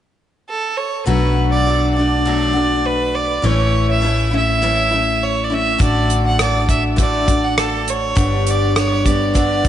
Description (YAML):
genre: folk rock and heartland rock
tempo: 101 BPM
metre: 4/4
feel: straight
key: unclear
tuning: A4 = 441 Hz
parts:
  - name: clear fiddle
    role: melody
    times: 0.5-9.7 s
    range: A4 to F#5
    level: -19 LUFS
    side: right 3 dB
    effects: analog delay
  - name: picked steel-string acoustic guitar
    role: accompaniment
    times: 1.1-9.7 s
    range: G2 to G4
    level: -20 LUFS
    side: left 2 dB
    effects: none
  - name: hollow-body short-scale fingered electric bass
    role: bass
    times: 1.1-9.7 s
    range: G1 to B1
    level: -20 LUFS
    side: equal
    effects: none
  - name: damped 70s drum kit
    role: drums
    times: 5.8-9.7 s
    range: hi-hat, kick drum, rim click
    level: -18 LUFS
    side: equal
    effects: none
room: moderate lush hall reverb, RT60 1.8 s, studio reverb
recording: big arena sound, nothing above 11.0 kHz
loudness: -14 LUFS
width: side -11 dB against mid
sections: 0.0-1.1 A section; 1.1-9.7 B section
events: none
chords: 0.0 N.C.; 1.1 Bm7; 3.4 A; 5.8 D/A; 8.2 G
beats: 0.47 | 1.06 1.65 2.25 2.84 | 3.43 4.02 4.62 5.21 | 5.80 6.39 6.99 7.58 | 8.17 8.76 9.36